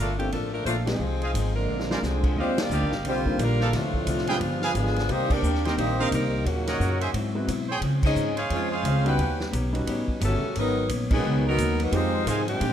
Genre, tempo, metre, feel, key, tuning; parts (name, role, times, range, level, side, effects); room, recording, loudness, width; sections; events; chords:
jazz, big band swing; 176 BPM; 4/4; swing 62% on 8ths; A4 = 440 Hz
warm saxophone section; melody; 0.0-12.7 s; Eb3 to G5; -29 LUFS; left 3 dB
vintage hollow-body jazz guitar; accompaniment; 0.0-12.7 s; F2 to Ab4; -34 LUFS; left 4 dB
warm trumpet section; stabs; 0.0-9.2, 12.3-12.4 s; G4 to Ab5; -31 LUFS; right 3 dB
upright bass; bass; 0.0-12.7 s; G1 to Db3; -27 LUFS; equal
clear concert grand piano; accompaniment; 0.2-12.7 s; Eb3 to Bb4; -32 LUFS; equal
vintage drum kit; drums; 0.2-12.7 s; crash cymbal, hi-hat, kick drum, ride cymbal, snare drum; -32 LUFS; equal
clear trombone section; second line; 1.6-12.7 s; Ab2 to Bb4; -31 LUFS; right 4 dB
moderate large studio reverb, RT60 1.3 s; -22 LUFS; side -10 dB against mid
0.0-2.4 A section; 2.4-12.7 B section
band accent 0.8, 2.5, 5.3, 8.0, 11.1; drum fill 1.7-2.0
0.0 Bbmaj7; 1.0 Fm7; 1.7 Bb9; 2.4 Ebmaj9; 3.7 Dm7; 4.4 G7b9; 5.1 Cm7; 6.5 Ebm7; 7.1 Ab7alt; 7.8 Dbmaj7; 9.2 Eb7alt; 10.6 Abm11; 11.9 Fm7